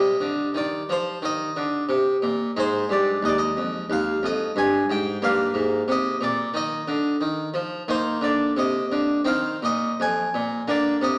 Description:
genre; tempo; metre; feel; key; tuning
classical, baroque-style suite movement for harpsichord; 90 BPM; 4/4; rubato; Eb major; A4 = 440 Hz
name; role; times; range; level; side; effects
harpsichord; solo; 0.0-11.2 s; Eb2 to Ab5; -24 LUFS; equal; none
room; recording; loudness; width
wet recital hall reverb, RT60 1.3 s; none; -24 LUFS; mono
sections
0.0-11.2 A section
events
none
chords
0.0 Cm; 2.6 Ab5; 5.2 Eb5; 9.3 Fm7; 10.7 Bb

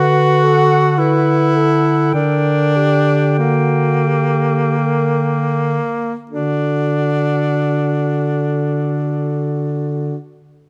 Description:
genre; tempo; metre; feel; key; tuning
classical, lyrical piece for single-reed quartet; 37-54 BPM; 3/4; rubato; D major; A4 = 440 Hz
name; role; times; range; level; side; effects
clear clarinet; melody; 0.0-10.2 s; A4 to G5; -29 LUFS; equal; none
warm alto saxophone; second line; 0.0-10.2 s; F#4 to B4; -25 LUFS; equal; none
clear tenor saxophone; accompaniment; 0.0-10.2 s; Bb3 to F#4; -20 LUFS; equal; none
dark bass clarinet; bass; 0.0-10.2 s; D3; -20 LUFS; equal; none
room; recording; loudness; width
light reverb; none; -16 LUFS; mono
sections
0.0-6.3 A section; 6.3-10.7 B section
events
slowing down 0.0-6.3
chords
0.0 D; 2.1 Gm/D; 6.3 D

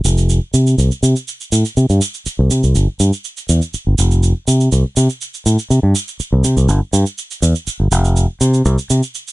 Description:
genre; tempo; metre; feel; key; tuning
filtered disco house; 122 BPM; 4/4; straight; unclear; A4 = 439 Hz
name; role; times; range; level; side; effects
fingered electric bass; bass; 0.0-9.0 s; F1 to C3; -12 LUFS; equal; low-pass filter
cabasa; drums; 0.0-9.3 s; none; -22 LUFS; right 5 dB; none
room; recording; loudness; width
little or no reverb; nothing above 10.9 kHz; -13 LUFS; side -19 dB against mid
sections
0.0-9.3 A section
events
filter sweep on fingered electric bass 0.0-9.3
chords
none

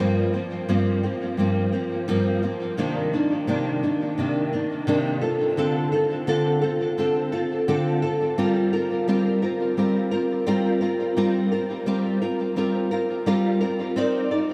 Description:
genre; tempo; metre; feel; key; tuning
indie pop; 86 BPM; 4/4; swing 55% on 16ths; G minor; A4 = 440 Hz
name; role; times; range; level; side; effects
nylon-string guitar; solo; 0.0-14.5 s; G2 to D5; -23 LUFS; equal; ensemble chorus, warbly pitch drift, diffuse ambient delay
room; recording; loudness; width
wet cathedral reverb, RT60 5.5 s; dreamy mix soaked in reverb; -23 LUFS; mono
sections
0.0-14.5 A section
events
none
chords
0.0 Gm7; 2.8 Cm9; 5.2 Dm7; 8.4 Gm7; 14.0 Cm9

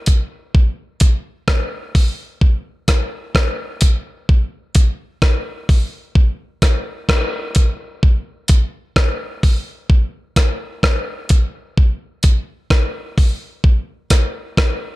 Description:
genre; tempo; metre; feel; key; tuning
reggae; 64 BPM; 4/4; straight; none; none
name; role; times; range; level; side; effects
dusty soul sampler-style drum kit; drums; 0.1-14.8 s; hi-hat, kick drum, rim click; -14 LUFS; equal; none
room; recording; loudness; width
little or no reverb; none; -15 LUFS; side -19 dB against mid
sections
0.0-15.0 A section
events
none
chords
none

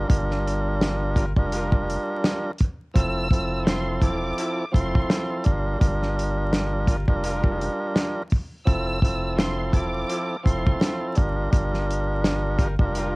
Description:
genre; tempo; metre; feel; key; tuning
hip hop, boom-bap hip-hop; 84 BPM; 4/4; swing 58% on 16ths; unclear; A4 = 443 Hz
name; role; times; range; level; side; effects
tonewheel organ; accompaniment; 0.0-13.2 s; F3 to Bb4; -26 LUFS; right 1 dB; overdrive, cassette tape, high-pass filter, low-pass filter
soft dub sub bass; bass; 0.0-13.2 s; E1 to G1; -28 LUFS; equal; none
warm soul drum kit; drums; 0.1-13.1 s; hi-hat, kick drum, snare drum; -22 LUFS; equal; cassette tape
mellow horn section; stabs; 1.2-13.2 s; F3 to Bb4; -35 LUFS; left 1 dB; high-pass filter, low-pass filter, cassette tape, analog delay
rich symphonic violin section; melody; 3.0-11.0 s; C6 to E6; -33 LUFS; equal; high-pass filter, low-pass filter, cassette tape, analog delay
room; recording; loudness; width
little or no reverb; home recording on cassette, vinyl crackle; -21 LUFS; side -27 dB against mid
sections
0.0-13.2 A section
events
none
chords
0.0 Gm7; 3.0 Fmaj7; 5.5 Gm7; 8.7 Fmaj7; 11.2 Gm7

